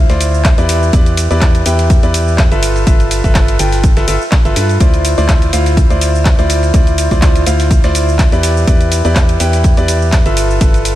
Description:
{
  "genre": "piano house",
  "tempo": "124 BPM",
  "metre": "4/4",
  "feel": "swing 54% on 16ths",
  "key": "D dorian",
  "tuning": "A4 = 440 Hz",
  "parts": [
    { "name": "clear concert grand piano", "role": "riff", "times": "0.0-11.0 s", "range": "E4 to G5", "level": "-16 LUFS", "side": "equal", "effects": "sidechain pumping, ping-pong delay" },
    { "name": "organ-like FM bass", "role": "bass", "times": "0.0-11.0 s", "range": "G1 to G2", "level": "-14 LUFS", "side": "equal", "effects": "sidechain pumping" },
    { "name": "dusty soul sampler-style drum kit", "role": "drums", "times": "0.1-11.0 s", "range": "ride cymbal, snare drum", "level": "-29 LUFS", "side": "right 1 dB", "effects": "none" },
    { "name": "house drum kit", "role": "drums", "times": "0.1-11.0 s", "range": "handclaps, hi-hat, ride cymbal, shaker", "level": "-20 LUFS", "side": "equal", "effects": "none" },
    { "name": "electronic kick drum", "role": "drums", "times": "0.4-10.7 s", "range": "none", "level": "-10 LUFS", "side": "equal", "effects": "none" }
  ],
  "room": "light reverb, digital ambience",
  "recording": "none",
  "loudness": "-9 LUFS",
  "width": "side -14 dB against mid",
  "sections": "0.0-11.0 A section",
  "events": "none",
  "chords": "0.0 Dm9; 0.7 Em7; 2.6 G13; 4.8 Dm9; 8.4 Em7; 10.4 G13"
}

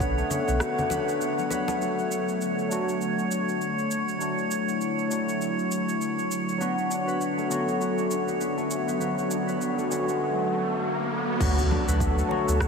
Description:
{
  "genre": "organic downtempo",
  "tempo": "100 BPM",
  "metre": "4/4",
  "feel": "swing 58% on 16ths",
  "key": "unclear",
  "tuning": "A4 = 440 Hz",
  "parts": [
    { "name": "airy breathy pad", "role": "sustained chords", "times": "0.0-12.7 s", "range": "D3 to A5", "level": "-31 LUFS", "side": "equal", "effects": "chorus, sidechain pumping" },
    { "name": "concert harp", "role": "arpeggios", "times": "0.0-12.7 s", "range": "F#3 to B4", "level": "-30 LUFS", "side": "left 2 dB", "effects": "analog delay" },
    { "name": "warm sub bass", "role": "bass", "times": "0.0-0.6, 11.4-12.7 s", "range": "B1 to D2", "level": "-25 LUFS", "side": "right 1 dB", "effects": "none" },
    { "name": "afro-pop drum kit", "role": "drums", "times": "0.0-12.7 s", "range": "crash cymbal, rim click, shaker", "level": "-36 LUFS", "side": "right 1 dB", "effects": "overdrive" },
    { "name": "electronic kick drum", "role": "drums", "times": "0.0-0.1, 11.4-12.7 s", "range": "none", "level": "-29 LUFS", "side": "right 1 dB", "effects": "overdrive" },
    { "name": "drifting glass-harmonics texture", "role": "texture", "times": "0.0-12.7 s", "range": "C#5", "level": "-33 LUFS", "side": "right 1 dB", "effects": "chorus, built-in reverb" },
    { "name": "congas", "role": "percussion", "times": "0.3-1.8, 11.7-12.6 s", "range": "none", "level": "-38 LUFS", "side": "left 2 dB", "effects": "none" },
    { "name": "bright tine electric piano", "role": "accompaniment", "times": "1.8-12.7 s", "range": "D3 to F#4", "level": "-30 LUFS", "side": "left 1 dB", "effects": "analog chorus, sidechain pumping, low-pass filter, analog delay" },
    { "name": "riser and impact", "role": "sound effects", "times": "8.9-12.7 s", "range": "none", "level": "-33 LUFS", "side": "right 1 dB", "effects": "none" }
  ],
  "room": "wet huge ambient reverb, RT60 9.3 s",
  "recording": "dreamy mix soaked in reverb",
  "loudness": "-24 LUFS",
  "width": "side -5 dB against mid",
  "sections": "0.0-1.8 A section; 1.8-11.4 B section; 11.4-12.7 C section",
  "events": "riser 8.9-11.4; impact 11.4-12.7",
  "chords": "0.0 Bm; 1.8 D"
}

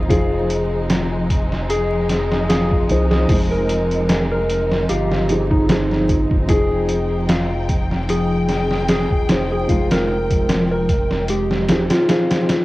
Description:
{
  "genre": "trip hop",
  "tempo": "75 BPM",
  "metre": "4/4",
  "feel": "swing 54% on 16ths",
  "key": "F minor",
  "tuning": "A4 = 440 Hz",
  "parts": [
    { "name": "felt-muted upright piano", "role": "accompaniment", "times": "0.0-12.6 s", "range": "F3 to C5", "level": "-25 LUFS", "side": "equal", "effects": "tremolo, cassette tape" },
    { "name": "warm studio string section", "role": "sustained chords", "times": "0.0-12.6 s", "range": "F3 to G5", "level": "-26 LUFS", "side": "equal", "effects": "cassette tape" },
    { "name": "round analog bass", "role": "bass", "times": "0.0-11.9 s", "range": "Eb1 to C2", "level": "-23 LUFS", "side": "equal", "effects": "none" },
    { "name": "electric slide guitar", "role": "melody", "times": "0.1-12.6 s", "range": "Eb4 to Bb4", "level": "-22 LUFS", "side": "equal", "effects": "cassette tape, tape echo" },
    { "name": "mellow electric guitar", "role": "arpeggios", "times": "0.1-12.5 s", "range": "F3 to Ab4", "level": "-27 LUFS", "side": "left 3 dB", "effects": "cassette tape, tape echo" },
    { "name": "trip hop sampler-style drum kit", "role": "drums", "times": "0.1-12.6 s", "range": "hi-hat, kick drum, snare drum", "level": "-20 LUFS", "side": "equal", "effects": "cassette tape" }
  ],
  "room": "light reverb, digital ambience",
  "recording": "home recording on cassette, vinyl crackle",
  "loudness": "-16 LUFS",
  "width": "side -18 dB against mid",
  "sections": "0.0-12.6 A section",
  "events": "none",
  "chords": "0.0 Fm7"
}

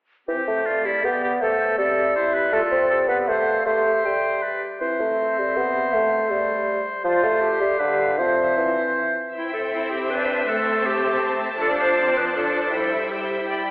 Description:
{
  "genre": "classical",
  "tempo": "159 BPM",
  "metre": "3/4",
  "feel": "straight",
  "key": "C major",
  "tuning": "A4 = 440 Hz",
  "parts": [
    { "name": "bright clarinet", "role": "second line", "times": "0.3-13.5 s", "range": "A3 to G5", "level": "-27 LUFS", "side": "equal", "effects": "none" },
    { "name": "bright oboe", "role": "second line", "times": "0.3-9.1 s", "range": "E4 to C5", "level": "-24 LUFS", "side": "equal", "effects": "none" },
    { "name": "silver concert flute", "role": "second line", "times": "0.3-9.2 s", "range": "C5 to F5", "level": "-28 LUFS", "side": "equal", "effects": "none" },
    { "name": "mellow bassoon", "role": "accompaniment", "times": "0.3-9.2 s", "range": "D3 to C4", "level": "-21 LUFS", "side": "equal", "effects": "none" },
    { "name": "warm symphonic violin section", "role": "second line", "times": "9.3-13.7 s", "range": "C5 to G5", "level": "-27 LUFS", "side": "equal", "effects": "none" },
    { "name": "clear symphonic violin section", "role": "melody", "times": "9.4-13.7 s", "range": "G5 to B5", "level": "-30 LUFS", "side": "equal", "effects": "none" },
    { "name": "clear symphonic viola section", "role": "accompaniment", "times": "9.4-13.7 s", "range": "F3 to C4", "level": "-29 LUFS", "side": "equal", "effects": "none" },
    { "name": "rich symphonic cello section", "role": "bass", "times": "9.7-13.7 s", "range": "C4 to E4", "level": "-27 LUFS", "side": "equal", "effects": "none" }
  ],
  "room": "wet scoring stage reverb, RT60 1.9 s",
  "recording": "heard from further back in the room, telephone sound",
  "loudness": "-19 LUFS",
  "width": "side -23 dB against mid",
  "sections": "0.3-9.3 A section; 9.3-13.7 A section",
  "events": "none",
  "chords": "0.3 C5; 1.4 Am7; 2.5 Dm7; 3.7 C; 4.4 G; 4.8 C/E; 5.9 Am7; 7.0 Dm7/F; 7.4 C; 7.8 G7/D; 8.2 C; 10.5 Am7; 11.6 Dm7/F; 12.7 C/G"
}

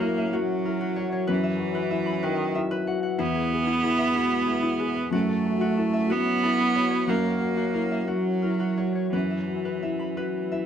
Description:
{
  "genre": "neoclassical piano and strings",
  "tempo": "57-64 BPM (dotted quarters)",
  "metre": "6/8",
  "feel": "rubato",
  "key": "unclear",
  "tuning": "A4 = 441 Hz",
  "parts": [
    { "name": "clear cello", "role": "second line", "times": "0.0-10.7 s", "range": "D#3 to B3", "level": "-26 LUFS", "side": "right 3 dB", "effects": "none" },
    { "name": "felt-muted upright piano", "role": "accompaniment", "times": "0.0-10.7 s", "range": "E2 to G#4", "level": "-27 LUFS", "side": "left 3 dB", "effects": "none" },
    { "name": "deep dark ambient pad", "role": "sustained chords", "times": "0.0-10.7 s", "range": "F#3 to E5", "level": "-36 LUFS", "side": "right 1 dB", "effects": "chorus, built-in reverb" },
    { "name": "concert harp", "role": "arpeggios", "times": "0.0-10.7 s", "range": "E4 to B5", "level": "-33 LUFS", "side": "left 3 dB", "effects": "slapback echo" }
  ],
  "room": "moderate small room reverb, RT60 0.5 s",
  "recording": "none",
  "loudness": "-23 LUFS",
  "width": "side -8 dB against mid",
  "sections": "0.0-10.7 A section",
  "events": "none",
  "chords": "0.0 F#7; 1.3 Bsus4/F#; 3.2 E; 5.1 F#m7; 7.1 F#7; 9.1 Bsus4/F#"
}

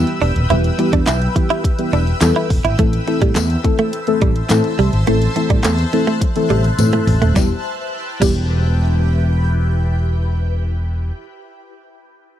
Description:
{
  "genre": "dance-pop",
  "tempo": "105 BPM",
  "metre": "4/4",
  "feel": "straight",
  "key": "E minor",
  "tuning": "A4 = 440 Hz",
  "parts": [
    { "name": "deep mellow chord stab", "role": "accompaniment", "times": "0.0-11.1 s", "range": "E3 to A4", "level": "-20 LUFS", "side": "left 2 dB", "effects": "chorus, sidechain pumping" },
    { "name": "shimmering ambient pad", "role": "sustained chords", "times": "0.0-10.4 s", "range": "E4 to F#6", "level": "-26 LUFS", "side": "left 2 dB", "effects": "chorus, built-in reverb, phaser, sidechain pumping" },
    { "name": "fretless electric bass", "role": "bass", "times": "0.0-11.1 s", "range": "D#1 to A2", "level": "-16 LUFS", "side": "equal", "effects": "sidechain pumping" },
    { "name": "pop drum kit", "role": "drums", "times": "0.1-8.4 s", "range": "crash cymbal, handclaps, hi-hat, kick drum, snare drum, toms", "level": "-19 LUFS", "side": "equal", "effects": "none" },
    { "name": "direct-recorded clean electric guitar", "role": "riff", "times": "0.2-8.3 s", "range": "G3 to E4", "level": "-19 LUFS", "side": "right 6 dB", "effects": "wide subtle chorus" },
    { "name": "tambourine", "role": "percussion", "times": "1.1-8.4 s", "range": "none", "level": "-29 LUFS", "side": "left 14 dB", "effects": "none" }
  ],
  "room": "digital ambience",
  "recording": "dry, close 1970s-style studio recording",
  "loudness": "-14 LUFS",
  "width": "side -11 dB against mid",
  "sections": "0.0-7.4 A section; 7.4-9.6 B section",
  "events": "drum fill 6.2-7.4",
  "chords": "0.0 Em; 2.8 Am; 7.4 Em"
}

